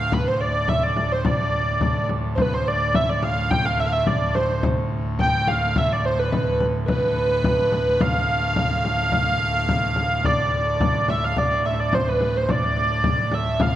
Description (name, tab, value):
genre	medieval dance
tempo	107 BPM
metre	2/4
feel	straight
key	D dorian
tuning	A4 = 441 Hz
part	warm hurdy-gurdy	melody	0.0-13.7 s	B4 to G5	-22 LUFS	right 1 dB	none
part	pipe organ, full organ	drone	0.0-13.8 s	D2 to A2	-26 LUFS	equal	none
part	frame drum	percussion	0.1-13.8 s	none	-25 LUFS	left 2 dB	none
room	wet recital hall reverb, RT60 1.6 s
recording	dark, warm production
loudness	-19 LUFS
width	side -12 dB against mid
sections	0.0-2.4 A section; 2.4-11.4 A section; 11.4-13.8 B section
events	none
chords	none